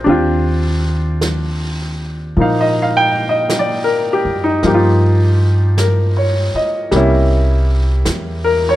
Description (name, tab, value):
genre	jazz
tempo	53 BPM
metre	4/4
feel	swing 67% on 8ths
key	Eb major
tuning	A4 = 440 Hz
part	bright upright piano	accompaniment	0.0-8.8 s	F3 to G5	-15 LUFS	left 1 dB	none
part	upright bass	bass	0.0-8.8 s	C2 to Bb2	-16 LUFS	equal	none
part	jazz brush drum kit	drums	0.1-8.8 s	brushed snare drum, hi-hat, snare drum	-26 LUFS	right 1 dB	none
room	little or no reverb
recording	none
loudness	-13 LUFS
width	side -14 dB against mid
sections	0.1-8.8 A section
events	none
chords	0.1 Ebmaj9; 4.6 Eb9/G; 6.9 C7b9